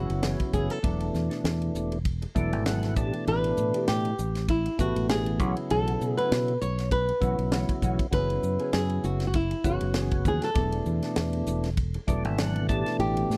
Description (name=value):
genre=electric jazz fusion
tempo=99 BPM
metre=4/4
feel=swing 56% on 16ths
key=unclear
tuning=A4 = 440 Hz
part: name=flamenco guitar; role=melody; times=0.0-13.4 s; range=E4 to C#5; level=-32 LUFS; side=equal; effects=none
part: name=percussive tonewheel organ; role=accompaniment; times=0.0-13.4 s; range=B2 to A5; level=-34 LUFS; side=equal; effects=slow rotary speaker
part: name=mellow electric guitar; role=stabs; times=0.0-13.3 s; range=E3 to A4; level=-39 LUFS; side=equal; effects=ensemble chorus, slapback echo
part: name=fingered electric bass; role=bass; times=0.0-13.4 s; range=E1 to B2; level=-31 LUFS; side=equal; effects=none
part: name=crisp fusion drum kit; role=drums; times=0.1-13.4 s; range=hi-hat, kick drum, ride cymbal, snare drum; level=-32 LUFS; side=equal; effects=none
room=little or no reverb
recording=dry, close 1970s-style studio recording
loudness=-27 LUFS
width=mono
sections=0.0-13.4 A section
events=tonewheel organ fill 2.1-3.3, 11.8-13.0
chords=0.0 F#9sus4; 0.8 E9sus4; 3.0 A9sus4; 5.4 B9sus4; 8.1 F#9sus4; 10.6 E9sus4; 12.7 A9sus4